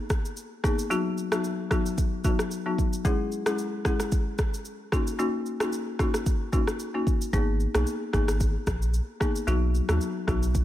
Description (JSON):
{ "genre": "afrobeats", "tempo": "112 BPM", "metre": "4/4", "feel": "swing 55% on 16ths", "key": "G# minor", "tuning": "A4 = 439 Hz", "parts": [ { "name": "afro-pop drum kit", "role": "drums", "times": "0.1-10.6 s", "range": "kick drum, rim click, shaker", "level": "-27 LUFS", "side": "equal", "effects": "none" }, { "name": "folk marimba with medium hard mallets", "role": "accompaniment", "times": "0.6-10.5 s", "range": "F#3 to G#4", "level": "-29 LUFS", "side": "left 2 dB", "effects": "none" }, { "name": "punchy sub bass", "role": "bass", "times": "7.3-10.6 s", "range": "G#1 to D#2", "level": "-25 LUFS", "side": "equal", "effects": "none" } ], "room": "digital ambience", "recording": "none", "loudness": "-24 LUFS", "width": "side -13 dB against mid", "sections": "0.0-10.6 A section", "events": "none", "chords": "0.0 G#madd9; 0.9 B; 3.0 C#m; 4.9 F#6; 7.3 G#madd9; 9.5 B" }